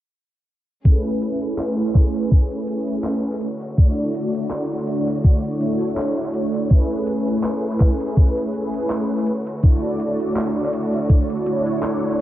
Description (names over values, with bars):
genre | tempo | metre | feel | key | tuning
vaporwave | 82 BPM | 4/4 | swing 55% on 16ths | A major | A4 = 440 Hz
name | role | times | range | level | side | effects
mellow synth brass | accompaniment | 0.8-12.2 s | A3 to D5 | -22 LUFS | equal | ensemble chorus, dub echo
clear symphonic string section | sustained chords | 0.9-12.2 s | D3 to C#5 | -30 LUFS | left 1 dB | vintage 12-bit sampler grit
electronic kick drum | drums | 0.9-11.3 s | none | -13 LUFS | equal | vintage 12-bit sampler grit
gated 80s digital drum machine | drums | 0.9-12.0 s | handclaps, hi-hat | -34 LUFS | equal | gated reverb, vintage 12-bit sampler grit, dub echo
room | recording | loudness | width
light reverb | echo-heavy mix, cassette tape, low-pass filter | -18 LUFS | side -14 dB against mid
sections
0.9-12.2 A section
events
filter sweep 0.9-12.2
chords
0.9 Amaj7; 3.4 Dmaj7; 6.7 Amaj7; 9.3 Dmaj7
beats
| 0.86 1.59 2.32 3.05 | 3.78 4.52 5.25 5.98 | 6.71 7.44 8.18 8.91 | 9.64 10.37 11.10 11.83